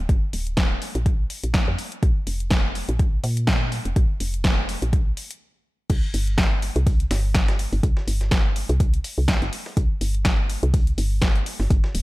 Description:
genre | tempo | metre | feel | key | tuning
deep house | 124 BPM | 4/4 | swing 56% on 16ths | unclear | A4 = 441 Hz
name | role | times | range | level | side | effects
woody FM bass | bass | 0.0-12.0 s | D1 to Bb2 | -24 LUFS | equal | sidechain pumping
deep house drum kit | drums | 0.1-12.0 s | crash cymbal, hi-hat, snare drum | -27 LUFS | equal | none
electronic kick drum | drums | 0.1-11.8 s | none | -20 LUFS | equal | none
dusty soul sampler-style drum kit | drums | 5.9-12.0 s | hi-hat, snare drum | -37 LUFS | equal | none
room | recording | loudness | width
little or no reverb | dark, warm production | -20 LUFS | side -20 dB against mid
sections
0.0-5.9 A section; 5.9-12.0 B section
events
build-up 0.0-5.9; stop 5.4-5.9; drop 5.9-12.0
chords
none

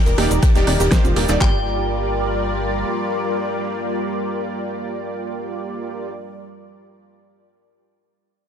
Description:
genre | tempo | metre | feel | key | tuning
progressive house | 122 BPM | 4/4 | straight | G minor | A4 = 441 Hz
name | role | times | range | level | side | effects
glassy synth bell | melody | 0.0-6.3 s | G5 | -32 LUFS | left 1 dB | chorus, tremolo, sidechain pumping, tape echo
lush unison pad | sustained chords | 0.0-6.1 s | G3 to D5 | -25 LUFS | left 1 dB | chorus, phaser, sidechain pumping
wide unison pluck | arpeggios | 0.1-1.6 s | F4 to D5 | -26 LUFS | left 2 dB | sidechain pumping, tape echo
tight sequencer bass | bass | 0.1-2.8 s | Eb1 to G1 | -23 LUFS | equal | sidechain pumping
jazz brush drum kit | drums | 0.1-1.4 s | ride cymbal, snare drum | -35 LUFS | right 1 dB | sidechain pumping on cymbals, high-pass filter on cymbals, sidechain pumping on hats, high-pass filter on hats, high-pass filter on snare, high-pass filter on room
pop drum kit | drums | 0.1-1.4 s | hi-hat, rim click, snare drum | -24 LUFS | left 1 dB | overdrive
cabasa | percussion | 0.1-1.4 s | none | -32 LUFS | right 3 dB | none
supersaw stab | stabs | 0.2-6.1 s | G2 to D5 | -26 LUFS | right 4 dB | vintage 12-bit sampler grit, sidechain pumping, tape echo
electronic rim click and congas | percussion | 0.2-1.1 s | none | -29 LUFS | right 3 dB | sidechain pumping on perc, sidechain pumping on snare
deep house drum kit | drums | 0.4-1.5 s | handclaps, kick drum | -16 LUFS | equal | overdrive
room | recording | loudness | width
light reverb | dark, warm production | -18 LUFS | side -8 dB against mid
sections
0.0-1.4 A section; 1.4-5.3 B section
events
drop 0.0-1.4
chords
0.0 Ebmaj7; 1.4 Gm7

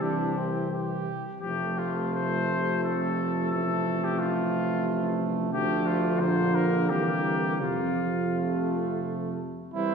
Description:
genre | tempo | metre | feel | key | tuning
classical, brass quintet | 86 BPM | 3/4 | uneven beats, rubato | F major | A4 = 440 Hz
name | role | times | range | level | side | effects
clear trumpet | melody | 0.0-9.9 s | F4 to C5 | -31 LUFS | left 4 dB | none
clear flugelhorn | second line | 0.0-9.9 s | A3 to G4 | -33 LUFS | right 5 dB | none
mellow French horn | accompaniment | 0.0-9.9 s | E3 to G3 | -30 LUFS | left 1 dB | none
warm trombone | accompaniment | 0.0-9.9 s | C3 to E3 | -34 LUFS | right 1 dB | none
clear tuba | bass | 0.0-9.9 s | F1 to F2 | -32 LUFS | right 2 dB | none
room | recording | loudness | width
wet scoring stage reverb, RT60 1.6 s | minimal, uncompressed stereo recording | -25 LUFS | side -6 dB against mid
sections
0.0-9.8 A section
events
none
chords
0.0 C; 1.4 F; 3.5 F/A; 5.5 Dm; 6.2 Bb; 6.9 C7; 7.6 F

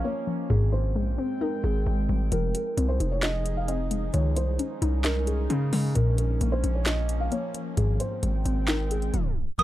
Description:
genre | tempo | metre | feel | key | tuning
hip hop, trap | 132 BPM | 4/4 | half-time | unclear | A4 = 440 Hz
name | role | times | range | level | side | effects
felt-muted upright piano | melody | 0.0-9.6 s | Ab4 to F5 | -33 LUFS | right 1 dB | low-pass filter, digital delay
warbly dusty pluck | accompaniment | 0.0-9.6 s | Ab2 to Eb5 | -29 LUFS | left 2 dB | chorus, low-pass filter
warbly tape-like pad | sustained chords | 0.0-9.6 s | F3 to G5 | -35 LUFS | right 2 dB | chorus, built-in reverb
distorted 808-style bass | bass | 0.5-9.6 s | F1 to Db3 | -26 LUFS | equal | distortion
trap drum kit | drums | 2.3-9.6 s | handclaps, hi-hat, snare drum | -31 LUFS | equal | none
metallic FM bell | second line | 9.6 s | Eb6 | -20 LUFS | right 4 dB | chorus, tremolo
impact | sound effects | 9.6 s | none | -44 LUFS | left 1 dB | none
room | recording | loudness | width
digital ambience | dark, warm production, tape stop | -24 LUFS | side -14 dB against mid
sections
0.0-9.6 A section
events
tape stop 9.1-9.6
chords
0.0 Bbm; 0.5 Abmaj7; 2.3 Fm7; 4.1 Dbsus2; 6.0 Bbm; 7.8 Abmaj7

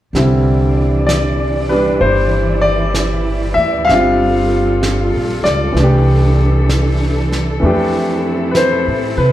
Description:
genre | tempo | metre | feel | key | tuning
jazz ballad | 64 BPM | 4/4 | swing 66% on 8ths | C major | A4 = 441 Hz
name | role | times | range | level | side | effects
muted symphonic cello section | sustained chords | 0.1-9.3 s | E3 to D5 | -20 LUFS | equal | none
upright bass | bass | 0.1-9.3 s | G1 to C3 | -16 LUFS | equal | none
vintage brush drum kit | drums | 0.1-9.3 s | brushed snare drum, hi-hat, snare drum | -25 LUFS | right 2 dB | none
clear grand piano | accompaniment | 0.2-9.3 s | D3 to F5 | -15 LUFS | left 1 dB | none
room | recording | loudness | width
wet large studio reverb, RT60 1.1 s | heard from further back in the room | -12 LUFS | side -13 dB against mid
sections
0.1-9.3 A section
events
none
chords
0.1 Cadd9; 3.9 Gm9; 5.8 C69; 7.6 Fmaj7

